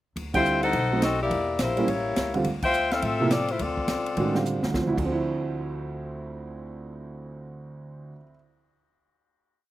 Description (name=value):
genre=jazz, big band swing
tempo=209 BPM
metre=4/4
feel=swing 62% on 8ths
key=D minor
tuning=A4 = 440 Hz
part: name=upright bass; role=bass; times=0.2-8.2 s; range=A1 to A2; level=-34 LUFS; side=equal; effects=none
part: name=swinging big-band drum kit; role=drums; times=0.2-5.0 s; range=crash cymbal, hi-hat, kick drum, ride cymbal, snare drum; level=-33 LUFS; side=right 1 dB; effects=none
part: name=warm grand piano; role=accompaniment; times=0.3-8.4 s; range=D2 to F#4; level=-28 LUFS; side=right 3 dB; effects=none
part: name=warm saxophone section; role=melody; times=0.4-4.5 s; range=A3 to G5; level=-25 LUFS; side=left 3 dB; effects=none
room=little or no reverb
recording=recorded outdoors, with no room sound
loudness=-23 LUFS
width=side -14 dB against mid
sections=0.2-4.7 A section; 4.7-7.0 final chord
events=band accent 0.3, 2.6; drum fill 4.5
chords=0.2 Dm9; 0.7 B7b9; 1.3 Em7b5; 1.9 A7b9; 2.4 Dm9